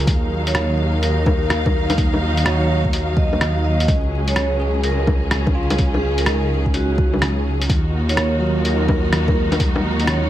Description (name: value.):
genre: future garage.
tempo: 126 BPM.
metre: 4/4.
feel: swing 66% on 16ths.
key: Eb minor.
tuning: A4 = 440 Hz.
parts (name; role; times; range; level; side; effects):
bell-like tine electric piano; accompaniment; 0.0-10.3 s; Gb3 to Bb4; -27 LUFS; right 2 dB; medium stereo tremolo, sidechain pumping, ping-pong delay.
warm studio string section; sustained chords; 0.0-10.3 s; Db3 to F5; -25 LUFS; equal; sidechain pumping.
swelling detuned saw bass; bass; 0.0-10.3 s; Db2 to Eb2; -20 LUFS; equal; sidechain pumping.
lo-fi sampler-style drum kit; drums; 0.0-10.2 s; bongos, hi-hat, rim click; -22 LUFS; left 1 dB; none.
electronic kick drum; drums; 0.1-9.7 s; none; -19 LUFS; equal; overdrive.
vibraphone with medium mallets; melody; 0.5-10.3 s; Gb4 to Eb5; -26 LUFS; equal; ping-pong delay.
room: light reverb, digital ambience.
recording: vinyl crackle.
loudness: -16 LUFS.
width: side -12 dB against mid.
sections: 0.0-10.3 A section.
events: none.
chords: 0.1 Ebmadd9; 3.9 Dbsus4; 7.7 Ebmadd9.